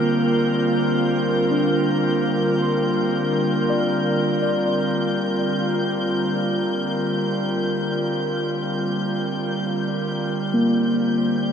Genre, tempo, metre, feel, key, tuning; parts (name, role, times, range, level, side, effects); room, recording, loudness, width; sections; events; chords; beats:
ambient; free time; A4 = 441 Hz
airy breathy pad; sustained chords; 0.0-11.5 s; D3 to Bb4; -21 LUFS; equal; chorus, shimmer reverb
muted felt-like synth keys; arpeggios; 0.0-11.5 s; Bb3 to C6; -25 LUFS; equal; chorus, diffuse ambient delay, shimmer reverb
organ-like drone; drone; 0.0-11.5 s; Bb3 to Bb4; -29 LUFS; left 1 dB; ensemble chorus, built-in reverb
warm studio violin section; texture; 0.0-11.5 s; G6; -31 LUFS; left 2 dB; shimmer reverb
wet cathedral reverb, RT60 5.5 s; in a vast, echoing space, cassette tape; -19 LUFS; side -7 dB against mid
0.0-11.5 A section
0.0 Gm7
free time